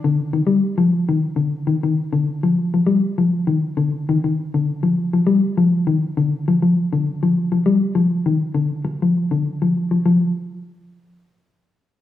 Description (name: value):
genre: afrobeat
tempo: 100 BPM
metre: 4/4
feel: swing 54% on 16ths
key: unclear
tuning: A4 = 442 Hz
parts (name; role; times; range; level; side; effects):
- mellow electric guitar; arpeggios; 0.0-10.2 s; D3 to G3; -16 LUFS; left 2 dB; none
room: wet large studio reverb, RT60 1.3 s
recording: band playing live in one room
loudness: -16 LUFS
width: side -12 dB against mid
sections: 0.5-10.0 A section; 10.0-12.0 B section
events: none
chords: none